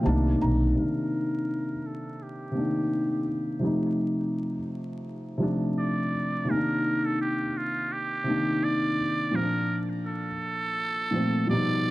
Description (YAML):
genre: lo-fi hip hop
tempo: 84 BPM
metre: 4/4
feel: swing 56% on 16ths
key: C dorian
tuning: A4 = 440 Hz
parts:
  - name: felt-muted upright piano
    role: accompaniment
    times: 0.0-11.9 s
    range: A2 to Bb5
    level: -26 LUFS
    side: equal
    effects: low-pass filter
  - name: upright bass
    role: bass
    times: 0.1-0.7 s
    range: B1 to C2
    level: -24 LUFS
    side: equal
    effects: none
  - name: trumpet with metal mute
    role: melody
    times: 0.8-11.9 s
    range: F4 to D5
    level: -31 LUFS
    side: right 2 dB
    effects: low-pass filter, tape echo
room: wet studio reverb, RT60 0.7 s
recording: vinyl crackle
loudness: -25 LUFS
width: side -18 dB against mid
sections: 0.8-11.9 A section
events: filter sweep 0.8-11.9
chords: 0.1 Cm9; 3.6 F7; 6.5 Cm9; 9.3 Bbmaj7